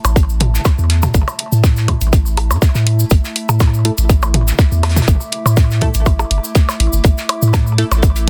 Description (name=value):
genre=minimal techno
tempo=122 BPM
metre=4/4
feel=swing 54% on 16ths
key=unclear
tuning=A4 = 441 Hz
part: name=punchy sub bass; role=bass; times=0.0-8.3 s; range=G1 to A2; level=-17 LUFS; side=equal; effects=sidechain pumping
part: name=electronic hi-hat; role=drums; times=0.0-8.3 s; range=none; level=-20 LUFS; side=equal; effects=none
part: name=cabasa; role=percussion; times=0.0-8.3 s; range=none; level=-29 LUFS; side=equal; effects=none
part: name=electronic percussion blips and toms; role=percussion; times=0.0-8.0 s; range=none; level=-23 LUFS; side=equal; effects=overdrive, digital delay
part: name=warbly tape-like pad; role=texture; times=0.0-8.3 s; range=A3 to D6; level=-31 LUFS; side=equal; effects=chorus, built-in reverb, phaser, sidechain pumping
part: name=cloth-damped thuddy drum kit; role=drums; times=0.2-8.3 s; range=hi-hat, snare drum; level=-30 LUFS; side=equal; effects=high-pass filter on hats, high-pass filter on snare, high-pass filter on room
part: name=electronic kick drum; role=drums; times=0.2-8.1 s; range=none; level=-14 LUFS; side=equal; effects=none
part: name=wavetable chord stab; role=stabs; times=3.8-7.9 s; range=A3 to A4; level=-26 LUFS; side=equal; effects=digital delay
room=little or no reverb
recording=dense, heavily limited modern master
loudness=-14 LUFS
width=mono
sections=0.0-8.3 A section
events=fade-in on ambient pad 0.0-8.3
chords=0.0 A5